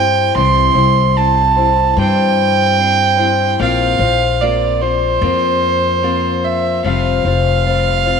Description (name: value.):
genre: acoustic folk duo or small band.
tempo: 74 BPM.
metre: 4/4.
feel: straight.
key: unclear.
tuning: A4 = 442 Hz.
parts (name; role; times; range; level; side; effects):
warm fiddle; melody; 0.0-8.2 s; C5 to C6; -14 LUFS; right 8 dB; none.
picked steel-string acoustic guitar; accompaniment; 0.0-8.2 s; C3 to C5; -18 LUFS; left 12 dB; none.
upright bass; bass; 0.0-8.2 s; F1 to G2; -18 LUFS; left 2 dB; none.
room: moderate echo chamber reverb, RT60 2.1 s.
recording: 1960s-style stereo with parts hard left and right.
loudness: -12 LUFS.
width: side -6 dB against mid.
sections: 0.0-8.2 A section.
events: none.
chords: 0.0 C; 3.6 Bbsus2; 6.8 Fsus2.